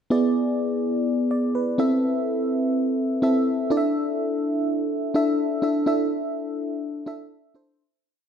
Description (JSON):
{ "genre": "pop", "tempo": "125 BPM", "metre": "4/4", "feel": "straight", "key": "unclear", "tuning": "A4 = 441 Hz", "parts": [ { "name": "mellow FM electric piano", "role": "solo", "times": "0.1-7.8 s", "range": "B3 to E5", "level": "-21 LUFS", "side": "equal", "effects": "chorus" } ], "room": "moderate scoring stage reverb, RT60 1.5 s", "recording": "none", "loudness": "-21 LUFS", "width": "side -8 dB against mid", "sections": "0.1-7.8 bridge", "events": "fade-out 5.9-7.8", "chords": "0.1 E7; 1.8 Am; 3.7 Dsus2" }